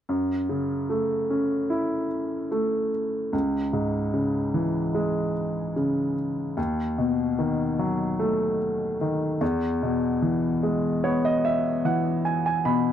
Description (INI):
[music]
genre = pop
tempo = 74 BPM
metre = 4/4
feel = straight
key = unclear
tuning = A4 = 440 Hz
[part]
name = clear baby grand piano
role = accompaniment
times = 0.1-12.9 s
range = C#2 to B5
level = -23 LUFS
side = equal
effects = none
[sound]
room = moderate booth ambience, RT60 0.3 s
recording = dry, close 1970s-style studio recording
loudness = -23 LUFS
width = side -10 dB against mid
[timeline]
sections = 0.1-12.9 A section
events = grand piano fill 10.6-12.9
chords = 0.1 F#m7; 3.3 C#m; 6.6 B7/D#; 9.4 E